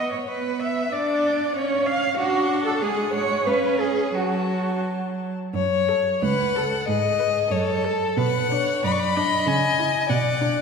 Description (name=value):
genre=quick classical-period movement for string quartet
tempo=86-97 BPM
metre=2/4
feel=rubato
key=F# minor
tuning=A4 = 441 Hz
part: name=rich violin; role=melody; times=0.0-10.6 s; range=A4 to C#6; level=-26 LUFS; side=left 7 dB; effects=none
part: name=rich violin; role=second line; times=0.0-10.6 s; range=F#4 to E#5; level=-26 LUFS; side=left 1 dB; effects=none
part: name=rich viola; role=accompaniment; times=0.0-10.6 s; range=F#3 to B4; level=-28 LUFS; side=right 1 dB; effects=none
part: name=rich cello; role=bass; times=0.0-10.6 s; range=C#2 to E#5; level=-25 LUFS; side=right 3 dB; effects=none
room=wet concert hall reverb, RT60 2.4 s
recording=heard from further back in the room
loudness=-20 LUFS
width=side -5 dB against mid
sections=0.0-5.5 A section; 5.5-10.6 B section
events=none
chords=0.3 Bm; 1.6 C#; 2.2 D; 2.8 G#7sus4; 3.5 C#7; 4.2 F#m; 6.9 G#m; 7.5 F#m; 8.2 Bm; 9.5 C#madd9; 10.1 Bm